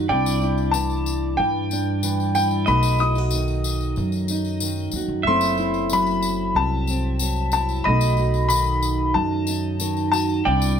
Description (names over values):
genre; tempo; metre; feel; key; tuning
acoustic folk duo or small band; 93 BPM; 4/4; straight; unclear; A4 = 442 Hz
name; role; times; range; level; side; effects
pedal steel guitar; second line; 0.0-10.8 s; B4 to E5; -30 LUFS; right 6 dB; none
fingerpicked steel-string acoustic guitar; accompaniment; 0.0-10.8 s; F#2 to F#4; -24 LUFS; equal; none
upright bass; bass; 0.0-10.8 s; F#1 to G2; -24 LUFS; equal; none
bright upright piano; melody; 0.1-10.8 s; G5 to D#6; -24 LUFS; left 2 dB; none
tambourine; percussion; 0.3-10.8 s; none; -31 LUFS; left 8 dB; none
room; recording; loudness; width
light reverb; none; -19 LUFS; side -8 dB against mid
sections
0.0-10.8 A section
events
none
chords
0.1 Cadd9; 2.7 B7; 5.3 F#m7b5; 7.9 B7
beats
| 0.10 0.75 1.40 2.04 | 2.69 3.34 3.98 4.63 | 5.28 5.92 6.57 7.22 | 7.87 8.51 9.16 9.81 | 10.46